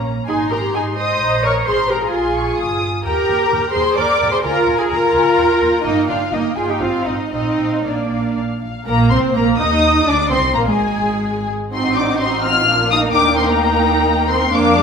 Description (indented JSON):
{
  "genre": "quick classical-period movement for string orchestra",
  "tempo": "128 BPM",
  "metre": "3/4",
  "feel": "rubato",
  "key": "Ab major, Eb major from 3.1 s",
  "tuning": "A4 = 440 Hz",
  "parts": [
    { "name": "muted studio violin section", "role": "melody", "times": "0.0-14.8 s", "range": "F5 to F6", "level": "-21 LUFS", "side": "left 4 dB", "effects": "none" },
    { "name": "muted studio violin section", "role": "second line", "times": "0.0-14.8 s", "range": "F#4 to Eb6", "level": "-22 LUFS", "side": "left 2 dB", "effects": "none" },
    { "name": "muted studio viola section", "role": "accompaniment", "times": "0.0-14.8 s", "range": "Ab3 to C5", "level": "-19 LUFS", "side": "right 1 dB", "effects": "none" },
    { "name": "muted studio cello section", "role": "bass", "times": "0.0-14.8 s", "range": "Ab3 to Eb5", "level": "-21 LUFS", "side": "right 2 dB", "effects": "none" },
    { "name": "muted studio double bass section", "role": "bass", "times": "0.0-14.8 s", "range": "G1 to Ab2", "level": "-24 LUFS", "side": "right 1 dB", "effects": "none" }
  ],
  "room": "wet scoring stage reverb, RT60 1.5 s",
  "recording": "minimal, uncompressed stereo recording",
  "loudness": "-14 LUFS",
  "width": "side -6 dB against mid",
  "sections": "0.0-8.9 A section; 8.9-14.8 B section",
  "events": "none",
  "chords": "0.3 Ab; 1.2 Eb5/Bb; 1.7 Ab; 3.1 Eb; 4.4 Bb7/D; 5.4 Eb; 5.9 Eb/G; 6.8 Fm; 7.3 Bb; 8.9 Eb5/Bb; 9.8 N.C.; 10.3 Abadd9; 11.7 Adim7; 12.7 Bb; 13.2 Eb",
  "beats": "| 0.28 0.75 1.21 | 1.68 2.13 2.59 | 3.05 3.52 3.98 | 4.44 4.91 5.38 | 5.85 6.33 6.82 | 7.33 7.85 8.37 | 8.88 9.36 9.84 | 10.31 10.79 11.27 | 11.74 12.21 12.68 | 13.15 13.62 14.07 | 14.54"
}